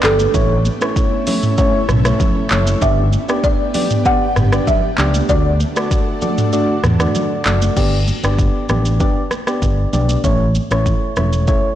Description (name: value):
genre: afrobeats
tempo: 97 BPM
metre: 4/4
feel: straight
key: unclear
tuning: A4 = 440 Hz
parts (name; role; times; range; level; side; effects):
- folk marimba with medium mallets; melody; 0.0-7.4 s; A4 to F#5; -20 LUFS; right 1 dB; tape echo
- soft electric-piano-like synth keys; accompaniment; 0.0-11.7 s; A3 to D5; -20 LUFS; left 1 dB; chorus
- ethereal airy pad; sustained chords; 0.0-7.7 s; D3 to A4; -26 LUFS; equal; ensemble chorus, built-in reverb
- fingered electric bass; bass; 0.0-11.5 s; E1 to E2; -18 LUFS; equal; transformer saturation
- afro-pop drum kit; drums; 0.0-11.6 s; crash cymbal, handclaps, hi-hat, kick drum, rim click, shaker, toms; -18 LUFS; equal; none
- congas; percussion; 0.0-11.3 s; none; -27 LUFS; right 2 dB; none
room: light reverb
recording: blown-out, overdriven recording, overdrive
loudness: -13 LUFS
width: side -12 dB against mid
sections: 0.0-7.8 A section; 7.8-11.8 B section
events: kick muted 6.5-7.8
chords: 0.3 A; 2.8 G; 5.3 D; 7.8 G; 10.2 A